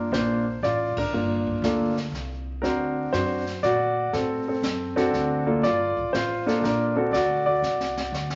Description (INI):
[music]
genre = jazz piano trio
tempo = 120 BPM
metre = 3/4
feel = swing 67% on 8ths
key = G harmonic minor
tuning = A4 = 440 Hz
[part]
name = warm concert grand piano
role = melody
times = 0.0-8.4 s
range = Bb3 to D5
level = -25 LUFS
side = equal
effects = none
[part]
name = upright bass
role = bass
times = 0.0-8.4 s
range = G1 to Bb2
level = -36 LUFS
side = equal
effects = none
[part]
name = jazz brush drum kit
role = drums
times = 0.1-8.4 s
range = brushed snare drum, crash cymbal, hi-hat, kick drum, snare drum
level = -37 LUFS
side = equal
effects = none
[sound]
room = wet large studio reverb, RT60 1.3 s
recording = vinyl crackle, nothing above 7.5 kHz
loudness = -25 LUFS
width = mono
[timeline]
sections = 0.0-8.4 A section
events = band accent 0.9; drum fill 7.6-8.4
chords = 0.0 Gm7; 2.6 D7; 5.6 Gm7; 7.1 D7